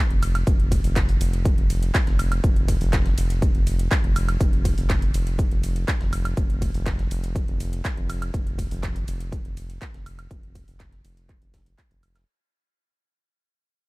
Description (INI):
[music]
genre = progressive house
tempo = 122 BPM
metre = 4/4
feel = straight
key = unclear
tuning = A4 = 442 Hz
[part]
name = round analog bass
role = bass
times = 0.1-12.2 s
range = F1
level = -25 LUFS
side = equal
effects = sidechain pumping
[part]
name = big-room dance drum kit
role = drums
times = 0.1-12.3 s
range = handclaps, hi-hat, ride cymbal, woodblock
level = -32 LUFS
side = right 1 dB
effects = none
[part]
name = breakbeat sampler-style drum kit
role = drums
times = 0.2-12.3 s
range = hi-hat, shaker, snare drum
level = -42 LUFS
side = equal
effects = none
[part]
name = electronic kick drum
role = drums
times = 0.5-11.9 s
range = none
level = -22 LUFS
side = equal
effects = none
[sound]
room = little or no reverb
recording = dark, warm production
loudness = -20 LUFS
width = side -23 dB against mid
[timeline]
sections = 0.0-12.3 A section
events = drop 0.0-12.3; fade-out 4.4-12.3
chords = none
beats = | 0.47 0.96 1.46 1.95 | 2.44 2.93 3.42 3.92 | 4.41 4.90 5.39 5.88 | 6.37 6.87 7.36 7.85 | 8.34 8.83 9.32 9.82 | 10.31 10.80 11.29 11.78